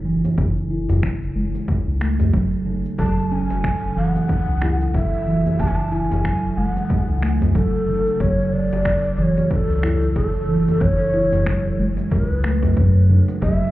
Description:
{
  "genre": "organic downtempo",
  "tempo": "92 BPM",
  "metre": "4/4",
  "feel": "swing 58% on 16ths",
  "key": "F# minor",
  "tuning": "A4 = 440 Hz",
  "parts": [
    { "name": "warm sub bass", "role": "bass", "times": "0.0-13.7 s", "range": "F#1 to F#2", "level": "-21 LUFS", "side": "equal", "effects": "none" },
    { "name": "steel tongue drum", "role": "arpeggios", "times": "0.1-13.5 s", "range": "C#3 to E4", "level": "-21 LUFS", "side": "right 2 dB", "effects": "tape echo" },
    { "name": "electronic shaker and finger snaps", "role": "drums", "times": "0.2-13.7 s", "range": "none", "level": "-34 LUFS", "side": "equal", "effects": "overdrive, studio reverb" },
    { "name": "djembe", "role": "percussion", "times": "0.2-13.6 s", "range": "none", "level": "-25 LUFS", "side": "left 1 dB", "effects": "none" },
    { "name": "electronic kick drum", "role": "drums", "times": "0.4-13.6 s", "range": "none", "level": "-24 LUFS", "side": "equal", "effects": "overdrive, studio reverb" },
    { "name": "breathy low ney", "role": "melody", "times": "3.0-13.7 s", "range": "A4 to A5", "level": "-25 LUFS", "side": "equal", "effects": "digital delay" },
    { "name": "bronze singing bowl", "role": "texture", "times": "3.0-13.4 s", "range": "A4", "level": "-39 LUFS", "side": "equal", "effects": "none" }
  ],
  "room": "light reverb, small room ambience",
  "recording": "heard muffled through a wall, club reverb, EQ",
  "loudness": "-17 LUFS",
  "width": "side -16 dB against mid",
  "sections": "0.0-13.4 A section",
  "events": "none",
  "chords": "0.0 F#m7"
}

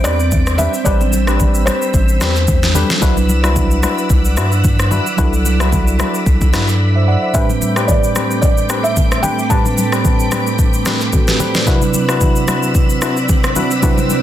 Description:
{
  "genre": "amapiano",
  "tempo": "111 BPM",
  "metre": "4/4",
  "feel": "swing 55% on 16ths",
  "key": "A dorian",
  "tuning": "A4 = 440 Hz",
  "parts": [
    { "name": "felt-muted upright piano", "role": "melody", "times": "0.0-2.7, 7.3-10.3 s", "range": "C5 to A5", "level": "-21 LUFS", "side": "equal", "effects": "tape echo" },
    { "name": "mellow tine electric piano", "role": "accompaniment", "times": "0.0-14.2 s", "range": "A2 to F#5", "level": "-20 LUFS", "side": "right 3 dB", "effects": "slow stereo tremolo" },
    { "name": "ensemble organ-string", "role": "sustained chords", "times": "0.0-14.2 s", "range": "A3 to E6", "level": "-22 LUFS", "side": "right 1 dB", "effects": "ensemble chorus, sidechain pumping" },
    { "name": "percussive organ stab", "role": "stabs", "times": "0.0-14.0 s", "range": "C4 to B4", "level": "-24 LUFS", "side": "left 6 dB", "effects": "chorus, tape echo" },
    { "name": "round analog bass", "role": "bass", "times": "0.0-7.2 s", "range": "A1 to G2", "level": "-15 LUFS", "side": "equal", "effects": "none" },
    { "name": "deep house drum kit", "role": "drums", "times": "0.0-14.2 s", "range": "kick drum, rim click, shaker, snare drum", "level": "-16 LUFS", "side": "equal", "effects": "overdrive" },
    { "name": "congas", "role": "percussion", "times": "0.3-14.2 s", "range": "none", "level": "-24 LUFS", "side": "left 2 dB", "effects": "none" },
    { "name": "swell", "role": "sound effects", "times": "13.3-14.2 s", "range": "none", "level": "-27 LUFS", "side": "right 4 dB", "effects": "none" }
  ],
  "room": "little or no reverb",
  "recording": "dense, heavily limited modern master",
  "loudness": "-12 LUFS",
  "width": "side -12 dB against mid",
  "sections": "0.0-14.2 A section",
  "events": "silent gap 6.8-7.3",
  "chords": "0.0 Am11; 3.0 Cmaj9#11; 7.3 Am11; 11.7 Cmaj9#11"
}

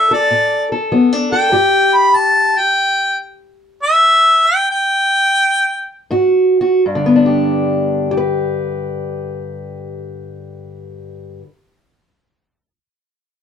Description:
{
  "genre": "acoustic country blues, solo or duo",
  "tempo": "78-99 BPM",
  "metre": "4/4",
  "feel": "swing 67% on 8ths",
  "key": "G major",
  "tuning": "A4 = 439 Hz",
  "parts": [
    { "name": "warm harmonica", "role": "melody", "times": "0.0-6.1 s", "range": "D5 to B5", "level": "-11 LUFS", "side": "equal", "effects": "none" },
    { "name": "fingerpicked steel-string acoustic guitar", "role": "accompaniment", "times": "0.0-11.5 s", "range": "G2 to B4", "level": "-16 LUFS", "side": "left 1 dB", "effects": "none" }
  ],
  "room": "moderate studio reverb, RT60 0.6 s",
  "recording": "dark, warm production",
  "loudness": "-12 LUFS",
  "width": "side -8 dB against mid",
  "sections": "0.0-6.8 A section; 6.8-9.9 B section",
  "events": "slowing down 1.5-6.8",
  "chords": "0.0 D; 1.5 N.C.; 6.1 F#sus2/G#; 6.8 G"
}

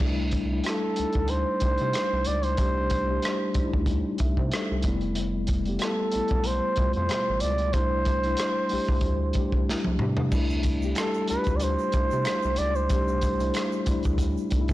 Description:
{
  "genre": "R&B, neo-soul",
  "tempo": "93 BPM",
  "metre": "4/4",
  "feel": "swing 54% on 16ths",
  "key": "C major",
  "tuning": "A4 = 440 Hz",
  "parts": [
    { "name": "mellow tine electric piano", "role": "accompaniment", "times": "0.0-14.7 s", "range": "B2 to E5", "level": "-29 LUFS", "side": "left 2 dB", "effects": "medium stereo tremolo" },
    { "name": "rubbery square bass", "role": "bass", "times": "0.0-14.7 s", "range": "F1 to C3", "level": "-29 LUFS", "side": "equal", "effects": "transformer saturation" },
    { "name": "crunchy breakbeat drum kit", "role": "drums", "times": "0.0-14.7 s", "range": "crash cymbal, hi-hat, kick drum, rim click, snare drum, toms", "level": "-28 LUFS", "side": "equal", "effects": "none" },
    { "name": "breathy flugelhorn", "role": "melody", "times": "0.7-14.0 s", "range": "A4 to D5", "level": "-28 LUFS", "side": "right 2 dB", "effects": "slapback echo" },
    { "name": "egg shaker and finger snaps", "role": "percussion", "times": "10.3-14.7 s", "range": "none", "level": "-44 LUFS", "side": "right 4 dB", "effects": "none" }
  ],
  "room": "light reverb, small room ambience",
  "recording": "blown-out, overdriven recording, overdrive",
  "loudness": "-23 LUFS",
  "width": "side -16 dB against mid",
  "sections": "0.0-10.3 A section; 10.3-14.7 A section",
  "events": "drum fill 9.7-10.3",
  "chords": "0.0 C6; 4.8 Fmaj9#11; 7.7 C69; 10.3 C6"
}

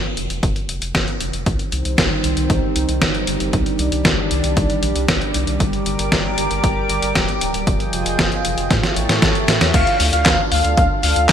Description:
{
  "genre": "italo disco",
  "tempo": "116 BPM",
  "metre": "4/4",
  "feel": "straight",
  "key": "C minor",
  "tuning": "A4 = 440 Hz",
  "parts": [
    { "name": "round analog bass", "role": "bass", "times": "0.0-11.3 s", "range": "D1 to A2", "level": "-22 LUFS", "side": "equal", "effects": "none" },
    { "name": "dusty soul sampler-style drum kit", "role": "drums", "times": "0.2-11.3 s", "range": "crash cymbal, handclaps, hi-hat, snare drum", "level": "-20 LUFS", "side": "equal", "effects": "small room ambience" },
    { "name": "electronic kick drum", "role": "drums", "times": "0.4-11.3 s", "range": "none", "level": "-21 LUFS", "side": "equal", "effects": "small room ambience" },
    { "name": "lush unison pad", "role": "sustained chords", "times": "1.5-11.3 s", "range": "Eb3 to D6", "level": "-22 LUFS", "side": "right 1 dB", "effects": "chorus" },
    { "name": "wide unison lead", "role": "melody", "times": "9.7-11.3 s", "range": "F5", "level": "-18 LUFS", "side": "left 1 dB", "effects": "ping-pong delay" }
  ],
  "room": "moderate plate reverb, RT60 2.9 s",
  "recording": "bright 1980s-style digital production",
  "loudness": "-16 LUFS",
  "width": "side -8 dB against mid",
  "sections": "0.0-9.7 A section; 9.7-11.3 B section",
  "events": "drum fill 8.7-9.7",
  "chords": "0.0 N.C.; 1.5 Cm; 5.6 Gm; 7.7 Fm7; 8.7 A7; 9.7 Dm"
}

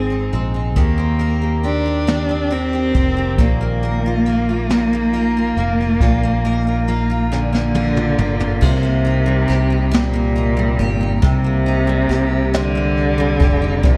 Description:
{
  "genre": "six-eight pop ballad",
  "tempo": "46 BPM (dotted quarters)",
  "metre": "6/8",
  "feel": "straight",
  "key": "unclear",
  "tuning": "A4 = 440 Hz",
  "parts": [
    { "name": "warm cello", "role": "melody", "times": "0.0-14.0 s", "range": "Bb2 to D4", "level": "-22 LUFS", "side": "equal", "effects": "diffuse ambient delay" },
    { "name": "picked steel-string acoustic guitar", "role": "accompaniment", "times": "0.0-14.0 s", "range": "Ab2 to Bb4", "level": "-25 LUFS", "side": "equal", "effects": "double-tracked" },
    { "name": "picked steel-string acoustic guitar", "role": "arpeggios", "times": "0.0-9.2 s", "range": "Eb3 to Ab4", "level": "-32 LUFS", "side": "equal", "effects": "diffuse ambient delay" },
    { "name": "fingered electric bass", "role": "bass", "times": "0.0-14.0 s", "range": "F1 to Eb2", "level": "-23 LUFS", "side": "equal", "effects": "none" },
    { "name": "jazz brush drum kit", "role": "drums", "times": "0.3-14.0 s", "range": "crash cymbal, hi-hat, kick drum, snare drum, toms", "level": "-21 LUFS", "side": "equal", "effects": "none" }
  ],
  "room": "light reverb, small room ambience",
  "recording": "none",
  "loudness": "-17 LUFS",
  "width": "mono",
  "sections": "0.0-8.6 A section; 8.6-14.0 B section",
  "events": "drum fill 7.3-8.6",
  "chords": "0.0 Ab; 0.8 Eb6; 3.4 Bbsus4"
}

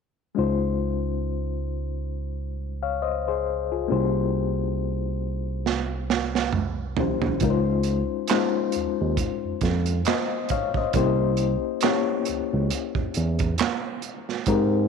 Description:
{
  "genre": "R&B, neo-soul",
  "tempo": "68 BPM",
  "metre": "4/4",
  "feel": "swing 57% on 16ths",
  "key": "unclear",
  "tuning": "A4 = 440 Hz",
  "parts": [
    { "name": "reed electric piano", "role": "accompaniment", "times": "0.3-14.9 s", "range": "Ab3 to F5", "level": "-26 LUFS", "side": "left 12 dB", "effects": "fast tremolo" },
    { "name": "barky tine electric piano", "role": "bass", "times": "0.4-14.9 s", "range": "C2 to Ab2", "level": "-26 LUFS", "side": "right 2 dB", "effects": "tube saturation, wide subtle chorus" },
    { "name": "crunchy breakbeat drum kit", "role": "drums", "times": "5.7-14.7 s", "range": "handclaps, hi-hat, kick drum, snare drum, toms", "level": "-26 LUFS", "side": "right 8 dB", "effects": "none" }
  ],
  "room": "light reverb, studio ambience",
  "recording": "1960s-style stereo with parts hard left and right",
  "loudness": "-23 LUFS",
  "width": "side -6 dB against mid",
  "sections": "0.4-7.4 A section; 7.4-14.9 B section",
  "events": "drum fill 5.6-7.4",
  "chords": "0.4 Dbmaj9; 3.9 C7b9; 7.4 Dbmaj9; 10.9 C7b9"
}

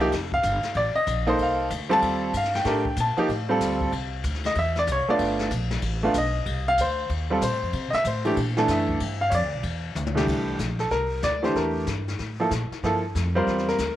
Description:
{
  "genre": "jazz piano trio",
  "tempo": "189 BPM",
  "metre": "4/4",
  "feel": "swing 63% on 8ths",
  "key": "C mixolydian",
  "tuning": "A4 = 440 Hz",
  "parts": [
    { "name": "clear baby grand piano", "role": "melody", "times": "0.0-14.0 s", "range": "C2 to A5", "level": "-23 LUFS", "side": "equal", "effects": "none" },
    { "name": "upright bass", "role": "bass", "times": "0.0-14.0 s", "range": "F1 to C3", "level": "-29 LUFS", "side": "equal", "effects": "none" },
    { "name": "jazz brush drum kit", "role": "drums", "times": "0.0-14.0 s", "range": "brushed snare drum, crash cymbal, hi-hat, kick drum, ride cymbal, snare drum, toms", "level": "-33 LUFS", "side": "left 5 dB", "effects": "none" }
  ],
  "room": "light reverb",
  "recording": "1960s-style stereo",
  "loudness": "-22 LUFS",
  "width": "side -13 dB against mid",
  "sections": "0.0-10.3 A section; 10.3-14.0 B section",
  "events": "grand piano solo 0.0-10.3; drum fill 10.0-10.3",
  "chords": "0.1 F7; 3.9 C; 5.2 G7; 6.5 F7; 7.7 C7; 9.0 G5; 10.3 C7"
}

